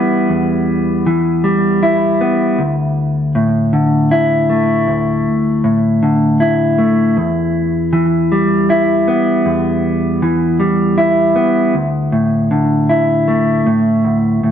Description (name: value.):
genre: rock.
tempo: 79 BPM.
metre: 3/4.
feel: straight.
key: unclear.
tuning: A4 = 442 Hz.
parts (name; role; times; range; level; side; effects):
mellow electric guitar; solo; 0.0-14.5 s; D2 to E4; -12 LUFS; equal; slapback echo.
room: moderate plate reverb, RT60 2.7 s.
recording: none.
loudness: -12 LUFS.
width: side -9 dB against mid.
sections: 0.0-11.8 A section; 11.8-14.5 B section.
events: none.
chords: 0.0 Em; 2.6 Dsus2; 7.2 Em; 11.8 Dsus2.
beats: | 0.29 1.06 1.82 | 2.59 3.35 4.12 | 4.88 5.65 6.41 | 7.17 7.94 8.70 | 9.46 10.22 10.99 | 11.75 12.52 13.28 | 14.04.